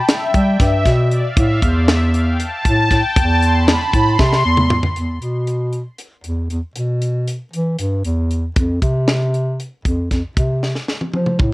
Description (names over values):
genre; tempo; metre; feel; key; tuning
progressive instrumental, band music in an uneven meter; 233 BPM (eighths); 7/8; straight; E phrygian; A4 = 439 Hz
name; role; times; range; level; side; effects
tight funk drum kit; drums; 0.1-11.5 s; hi-hat, kick drum, snare drum, toms; -18 LUFS; equal; none
breathy bass clarinet; bass; 0.3-11.5 s; E2 to G3; -17 LUFS; equal; none
room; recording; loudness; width
little or no reverb; worn, warbling old tape, cassette tape, warbly pitch drift; -15 LUFS; side -19 dB against mid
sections
0.0-5.0 A section; 5.0-11.5 B section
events
drum fill 4.2-5.0, 10.6-11.5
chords
none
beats
0.09 0.35 0.60 0.86 1.11 | 1.37 1.63 1.88 2.14 2.39 2.65 2.90 | 3.16 3.42 3.67 3.93 4.19 4.44 4.70 | 4.96 5.21 5.47 5.73 5.98 6.24 6.50 | 6.76 7.01 7.27 7.53 7.79 8.04 8.30 | 8.56 8.82 9.08 9.33 9.59 9.85 10.11 | 10.37 10.62 10.88 11.14 11.39